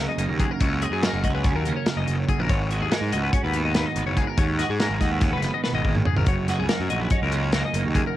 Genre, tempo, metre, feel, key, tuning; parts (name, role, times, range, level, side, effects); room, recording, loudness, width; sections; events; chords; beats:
math rock and midwest emo; 286 BPM (eighths); 9/8; straight; F# major; A4 = 441 Hz
twelve-string electric guitar; accompaniment; 0.0-8.2 s; F#2 to G#4; -28 LUFS; right 6 dB; ensemble chorus, cassette tape
twelve-string electric guitar; arpeggios; 0.0-8.2 s; G#4 to D#5; -29 LUFS; left 9 dB; cassette tape
fuzz picked electric bass; bass; 0.0-8.0 s; F#1 to G#2; -26 LUFS; equal; overdrive
modern studio drum kit; drums; 0.2-8.1 s; hi-hat, kick drum, snare drum, toms; -24 LUFS; equal; cassette tape
light reverb; home recording on cassette, faint mains hum; -21 LUFS; side -14 dB against mid
0.0-8.2 A section
drum fill 5.6-6.3
0.0 F#69
0.18 0.40 | 0.60 0.81 1.02 1.24 1.45 1.66 1.86 2.08 2.29 | 2.50 2.71 2.92 3.12 3.33 3.54 3.75 3.96 4.17 | 4.38 4.59 4.80 5.01 5.22 5.43 5.64 5.85 6.06 | 6.27 6.48 6.69 6.90 7.11 7.32 7.53 7.74 7.95 | 8.16